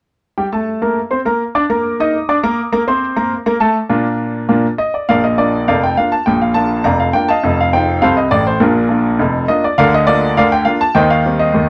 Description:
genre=ragtime piano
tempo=102 BPM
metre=2/4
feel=straight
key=Bb major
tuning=A4 = 441 Hz
part: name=clear grand piano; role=solo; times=0.4-11.7 s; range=F1 to Eb6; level=-15 LUFS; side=equal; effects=none
room=little or no reverb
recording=dry, close 1970s-style studio recording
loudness=-15 LUFS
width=mono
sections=0.4-5.1 A section; 5.1-11.7 B section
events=none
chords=0.4 Bb; 7.4 F7; 8.6 Bb; 9.8 Bb/D; 10.9 Cm/Eb

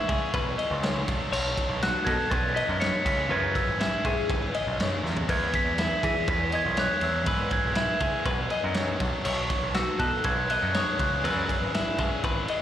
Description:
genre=math rock and midwest emo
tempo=121 BPM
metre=4/4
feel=straight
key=E major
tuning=A4 = 440 Hz
part: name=glockenspiel with rubber mallets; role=melody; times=0.0-12.6 s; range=D#6 to C#7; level=-30 LUFS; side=right 2 dB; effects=plate reverb, slapback echo
part: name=twelve-string electric guitar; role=arpeggios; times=0.0-12.6 s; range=E4 to D#5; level=-31 LUFS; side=left 3 dB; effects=plate reverb, slapback echo
part: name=biting overdriven guitar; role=riff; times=0.0-12.6 s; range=B2 to A4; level=-34 LUFS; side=equal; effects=slapback echo
part: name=growling picked electric bass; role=bass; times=0.1-12.4 s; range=G#1 to E3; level=-30 LUFS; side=right 1 dB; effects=overdrive
part: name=loose indie drum kit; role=drums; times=0.1-12.6 s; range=crash cymbal, kick drum, ride cymbal, snare drum, toms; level=-30 LUFS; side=equal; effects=none
room=light reverb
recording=live gig heard through the venue's PA, recital hall reverb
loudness=-24 LUFS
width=side -10 dB against mid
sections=0.0-12.6 A section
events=drum fill 5.0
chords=0.0 E6; 1.1 B9; 3.1 C#m7; 5.3 E6; 9.0 B9; 11.0 C#m7

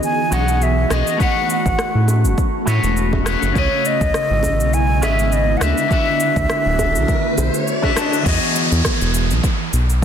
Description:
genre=sunset chillout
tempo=102 BPM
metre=4/4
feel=swing 55% on 16ths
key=E major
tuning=A4 = 439 Hz
part: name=breathy concert flute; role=melody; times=0.0-8.0 s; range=C#5 to G#5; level=-21 LUFS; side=equal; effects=ping-pong delay
part: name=electric guitar with an envelope filter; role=accompaniment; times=0.0-9.7 s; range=C#3 to A5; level=-22 LUFS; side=moving between left 7 dB and right 6 dB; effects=auto-pan, ping-pong delay
part: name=ethereal airy pad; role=sustained chords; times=0.0-8.2 s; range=C#3 to D#5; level=-25 LUFS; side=equal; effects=ensemble chorus, built-in reverb
part: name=electronic shaker and rim click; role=drums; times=0.0-10.0 s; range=none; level=-27 LUFS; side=equal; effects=studio reverb, soft clipping on snare
part: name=round analog bass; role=bass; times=0.3-10.0 s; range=D1 to A2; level=-18 LUFS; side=equal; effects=none
part: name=bongos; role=percussion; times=0.3-8.2 s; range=none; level=-30 LUFS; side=right 4 dB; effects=none
part: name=electronic kick drum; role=drums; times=1.2-10.0 s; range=none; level=-20 LUFS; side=equal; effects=studio reverb
part: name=riser and downlifter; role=sound effects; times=5.2-10.0 s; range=none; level=-24 LUFS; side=equal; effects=none
room=light reverb, digital ambience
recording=dense, heavily limited modern master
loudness=-15 LUFS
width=side -8 dB against mid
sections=0.0-8.3 A section; 8.3-10.0 B section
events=riser 5.2-8.3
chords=0.0 Emaj9; 1.2 A69; 3.6 C#m9; 5.6 D69; 8.3 Emaj9

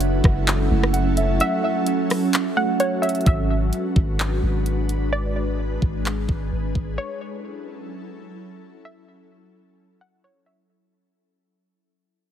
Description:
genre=hip hop, atmospheric cloud-rap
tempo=129 BPM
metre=4/4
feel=half-time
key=F# minor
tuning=A4 = 439 Hz
part: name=warbly dusty pluck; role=melody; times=0.0-10.7 s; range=C#5 to F#5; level=-25 LUFS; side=equal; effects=chorus, digital delay
part: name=ethereal airy pad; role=sustained chords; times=0.0-10.7 s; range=F#3 to B4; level=-25 LUFS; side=right 1 dB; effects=ensemble chorus, built-in reverb, sidechain pumping
part: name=muted felt-like synth keys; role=arpeggios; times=0.0-3.3 s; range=A3 to F#5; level=-27 LUFS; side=right 5 dB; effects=chorus, digital delay
part: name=soft 808-style bass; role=bass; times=0.0-7.0 s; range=F#1 to G#1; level=-23 LUFS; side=equal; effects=none
part: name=trap drum kit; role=drums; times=0.0-6.9 s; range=handclaps, hi-hat, kick drum, rim click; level=-21 LUFS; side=equal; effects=none
room=light reverb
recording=heavily compressed radio sound, multiband compression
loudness=-19 LUFS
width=side -9 dB against mid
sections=0.0-3.3 A section; 3.3-10.7 B section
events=kick muted 1.4-3.3; fade-out 3.3-10.7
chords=0.0 F#m7; 3.3 G#m7b5; 7.0 F#m7

